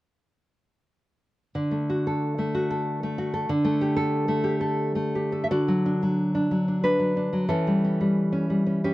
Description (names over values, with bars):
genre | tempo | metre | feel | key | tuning
romantic piece for solo classical guitar | 91 BPM | 3/4 | uneven beats, rubato | D major | A4 = 440 Hz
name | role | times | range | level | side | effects
nylon-string guitar | solo | 1.5-8.9 s | D3 to E5 | -22 LUFS | equal | none
room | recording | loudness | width
light reverb | dry, close 1970s-style studio recording | -22 LUFS | side -17 dB against mid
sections
1.6-5.5 A section; 5.5-8.9 B section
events
none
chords
1.6 D; 3.5 Dsus4; 5.5 D; 7.5 A7/E